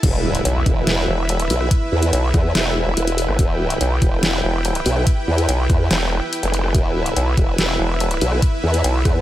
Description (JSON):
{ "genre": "heavy wobble dubstep", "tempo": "143 BPM", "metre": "4/4", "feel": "half-time", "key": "E minor", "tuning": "A4 = 440 Hz", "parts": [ { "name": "supersaw pad", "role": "sustained chords", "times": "0.0-9.2 s", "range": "E4 to G5", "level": "-24 LUFS", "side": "right 1 dB", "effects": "sidechain pumping" }, { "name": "formant-sweep wobble bass", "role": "bass", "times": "0.0-9.2 s", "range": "E1 to E2", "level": "-19 LUFS", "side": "equal", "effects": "chorus, overdrive" }, { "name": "dubstep drum kit", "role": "drums", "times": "0.0-9.1 s", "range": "crash cymbal, hi-hat, rim click, snare drum", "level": "-23 LUFS", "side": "equal", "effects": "high-pass filter on snare, high-pass filter on hats, high-pass filter on cymbals, high-pass filter on room" }, { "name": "electronic kick drum", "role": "drums", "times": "0.0-9.1 s", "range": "none", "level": "-17 LUFS", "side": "equal", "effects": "none" }, { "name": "swell and impact", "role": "sound effects", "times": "0.0-1.7 s", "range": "none", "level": "-29 LUFS", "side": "equal", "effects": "none" }, { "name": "vowel-sweep wobble bass", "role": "bass", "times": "0.5-9.0 s", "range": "E1 to B1", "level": "-19 LUFS", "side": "equal", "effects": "chorus, overdrive" } ], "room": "digital ambience", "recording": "none", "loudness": "-16 LUFS", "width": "side -14 dB against mid", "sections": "0.0-9.2 A section", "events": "drop 0.0-9.2; impact 0.0-1.7", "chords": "0.0 E5" }